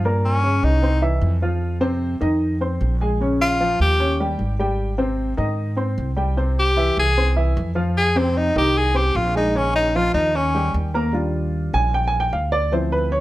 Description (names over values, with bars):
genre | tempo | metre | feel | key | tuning
Afro-Cuban jazz | 151 BPM | 4/4 | straight | unclear | A4 = 440 Hz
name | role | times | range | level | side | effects
upright bass | bass | 0.0-13.2 s | Ab1 to Ab2 | -21 LUFS | equal | none
warm baby grand piano | accompaniment | 0.1-13.2 s | Bb2 to Db6 | -22 LUFS | equal | none
clear tenor saxophone | melody | 0.2-1.0, 3.4-4.2, 6.6-10.8 s | C4 to Ab4 | -20 LUFS | left 1 dB | plate reverb
room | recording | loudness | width
moderate small room reverb, RT60 0.6 s | none | -18 LUFS | side -16 dB against mid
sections
0.0-11.1 A section; 11.1-13.2 A section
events
tenor saxophone solo 0.0-11.1; grand piano solo 11.1-13.2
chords
0.0 Gdim; 0.8 Cadd11; 1.6 Fm7; 3.2 Bbm; 4.0 Eb7; 4.8 Abmaj7; 6.4 C; 8.0 Fm7; 9.6 Bbm; 10.3 Eb7; 11.1 Ebmaj7